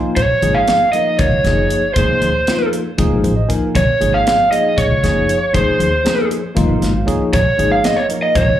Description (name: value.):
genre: electric jazz fusion.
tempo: 235 BPM (eighths).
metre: 7/8.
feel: straight.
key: Bb minor.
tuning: A4 = 439 Hz.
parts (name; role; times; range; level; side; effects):
tine electric piano; accompaniment; 0.0-8.5 s; F3 to Ab5; -20 LUFS; left 1 dB; medium stereo tremolo, wide subtle chorus, plate reverb, slapback echo.
lead guitar through a small cranked amp; melody; 0.2-8.6 s; C5 to F5; -16 LUFS; right 1 dB; overdrive, plate reverb, slapback echo, tape echo.
upright bass; bass; 0.2-8.6 s; F1 to Eb2; -18 LUFS; left 1 dB; none.
crisp fusion drum kit; drums; 0.2-8.5 s; hi-hat, kick drum, snare drum; -21 LUFS; equal; none.
room: light reverb.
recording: live gig heard through the venue's PA, club reverb.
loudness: -13 LUFS.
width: side -11 dB against mid.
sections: 0.0-8.6 A section.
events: tine electric piano fill 0.0, 3.0-3.7, 6.6-7.3.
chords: 0.2 Bbm7; 2.0 Fm7; 3.7 Bbm7; 5.5 Fm7; 7.3 Bbm7.